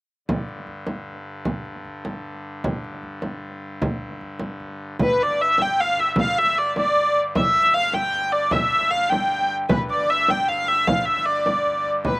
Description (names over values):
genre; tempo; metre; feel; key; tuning
medieval dance; 102 BPM (dotted quarters); 6/8; straight; unclear; A4 = 440 Hz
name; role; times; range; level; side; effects
pipe organ, trumpet; drone; 0.3-12.2 s; G2 to D3; -35 LUFS; left 1 dB; none
frame drum; percussion; 0.3-12.2 s; none; -24 LUFS; right 1 dB; none
warm hurdy-gurdy; melody; 5.0-12.2 s; B4 to G5; -18 LUFS; equal; slapback echo
room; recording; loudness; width
little or no reverb; recorded outdoors, with no room sound; -18 LUFS; side -22 dB against mid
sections
0.3-5.0 A section; 5.0-12.2 B section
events
none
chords
none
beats
| 0.29 0.88 | 1.46 2.05 | 2.64 3.23 | 3.82 4.40 | 4.99 5.58 | 6.17 6.76 | 7.34 7.93 | 8.52 9.11 | 9.70 10.28 | 10.87 11.46 | 12.05